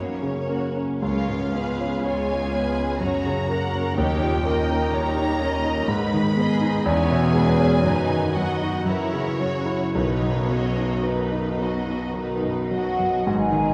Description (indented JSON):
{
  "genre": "classical, romantic movement for piano and orchestra",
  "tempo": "53-63 BPM",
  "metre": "3/4",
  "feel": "rubato",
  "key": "B major",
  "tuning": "A4 = 439 Hz",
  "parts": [
    { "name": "warm concert grand piano", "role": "melody", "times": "0.0-13.7 s", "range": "B1 to C#5", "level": "-26 LUFS", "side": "equal", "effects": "none" },
    { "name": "rich studio violin section", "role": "second line", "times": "0.0-13.3 s", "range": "A#3 to F#5", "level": "-33 LUFS", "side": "equal", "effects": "none" },
    { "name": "rich studio viola section", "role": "accompaniment", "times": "0.0-13.3 s", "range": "D#3 to F#4", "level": "-31 LUFS", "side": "equal", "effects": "none" },
    { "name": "rich studio cello section", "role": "bass", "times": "0.0-13.7 s", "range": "C#2 to B2", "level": "-32 LUFS", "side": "equal", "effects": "none" },
    { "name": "rich studio violin section", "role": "melody", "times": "1.0-13.7 s", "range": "F#4 to B5", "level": "-34 LUFS", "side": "equal", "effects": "none" },
    { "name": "large flute ensemble", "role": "second line", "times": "12.7-13.7 s", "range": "F#5 to G#5", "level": "-27 LUFS", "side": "equal", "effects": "none" },
    { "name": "warm French horn section", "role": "sustained chords", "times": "13.3-13.7 s", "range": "B3 to D#4", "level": "-29 LUFS", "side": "equal", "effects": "none" },
    { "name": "clear studio double bass section", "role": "bass", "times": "13.3-13.7 s", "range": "G#1", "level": "-34 LUFS", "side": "equal", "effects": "none" }
  ],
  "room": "wet scoring stage reverb, RT60 1.8 s",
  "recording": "heard from further back in the room, nothing above 10.7 kHz",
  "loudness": "-23 LUFS",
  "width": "mono",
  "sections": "0.0-13.3 A section",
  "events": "none",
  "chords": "0.0 F#; 1.0 C#7; 3.0 F#; 4.0 D#7; 5.9 G#m; 6.9 C#m7/E; 7.8 B/F#; 8.9 F#7; 9.9 B",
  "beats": "| 1.01 2.03 3.00 | 3.97 4.92 5.88 | 6.86 7.84 8.87 | 9.95 11.06 12.17 | 13.28"
}